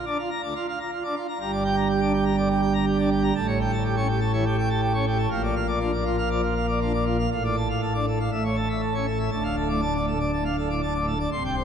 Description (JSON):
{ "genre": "classical, organ toccata", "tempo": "121 BPM", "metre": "4/4", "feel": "straight", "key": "D minor", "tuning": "A4 = 440 Hz", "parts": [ { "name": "pipe organ, plenum", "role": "solo", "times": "0.0-11.6 s", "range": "C1 to C6", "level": "-22 LUFS", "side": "equal", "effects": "none" } ], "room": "wet church reverb, RT60 2.9 s", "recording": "none", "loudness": "-22 LUFS", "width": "side -8 dB against mid", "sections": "0.0-9.3 A section; 9.3-11.6 B section", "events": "none", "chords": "0.0 Bb/D; 1.4 Gm; 3.4 A7; 5.3 Bb; 7.3 Dm/A; 8.3 A; 9.3 Dm" }